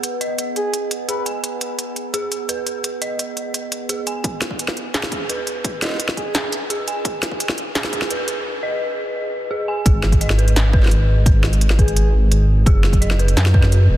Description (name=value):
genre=half-time drum and bass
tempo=171 BPM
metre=4/4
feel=half-time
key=G# minor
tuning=A4 = 438 Hz
part: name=dark detuned synth bell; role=arpeggios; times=0.0-14.0 s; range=G#4 to G#5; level=-26 LUFS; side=right 1 dB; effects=chorus, low-pass filter, digital delay
part: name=industrial drum kit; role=drums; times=0.0-13.8 s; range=hi-hat, snare drum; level=-23 LUFS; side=equal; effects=none
part: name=metallic inharmonic drone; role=texture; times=0.0-4.3 s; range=B3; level=-31 LUFS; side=right 1 dB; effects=chorus, built-in reverb
part: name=breathy flute-like synth lead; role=melody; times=0.6-1.2, 6.2-6.5, 11.8-12.1 s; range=G#4 to B4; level=-29 LUFS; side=equal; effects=wide subtle chorus, digital delay
part: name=electronic kick drum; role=drums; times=4.2-13.6 s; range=none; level=-17 LUFS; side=equal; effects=high-pass filter on kick, high-pass filter on room
part: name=dark detuned saw bass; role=bass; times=9.9-14.0 s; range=E1 to F#2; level=-15 LUFS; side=equal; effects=none
room=light reverb, digital ambience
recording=dense, heavily limited modern master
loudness=-17 LUFS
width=side -14 dB against mid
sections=0.0-4.2 A section; 4.2-9.9 B section; 9.9-14.0 C section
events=build-up 4.2-9.9; filter sweep on synth bell 4.2-9.9; drop 9.9-14.0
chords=0.0 B6; 9.9 G#m; 12.7 N.C.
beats=| 0.03 0.39 0.74 1.09 | 1.44 1.79 2.14 2.49 | 2.84 3.19 3.54 3.89 | 4.25 4.60 4.95 5.30 | 5.65 6.00 6.35 6.70 | 7.05 7.40 7.75 8.10 | 8.46 8.81 9.16 9.51 | 9.86 10.21 10.56 10.91 | 11.26 11.61 11.96 12.31 | 12.67 13.02 13.37 13.72